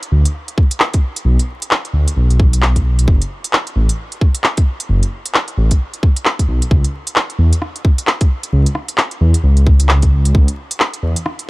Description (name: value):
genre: future garage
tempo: 132 BPM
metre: 4/4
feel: swing 60% on 16ths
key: F# minor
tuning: A4 = 438 Hz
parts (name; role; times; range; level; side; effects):
- organic electronic drum kit; drums; 0.0-11.5 s; handclaps, hi-hat, rim click; -18 LUFS; equal; none
- dark detuned saw bass; bass; 0.1-11.2 s; F#1 to E2; -12 LUFS; equal; sidechain pumping
- electronic kick drum; drums; 0.6-10.5 s; none; -12 LUFS; equal; none
room: little or no reverb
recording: vinyl crackle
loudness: -12 LUFS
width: side -22 dB against mid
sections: 0.0-11.5 A section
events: none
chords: none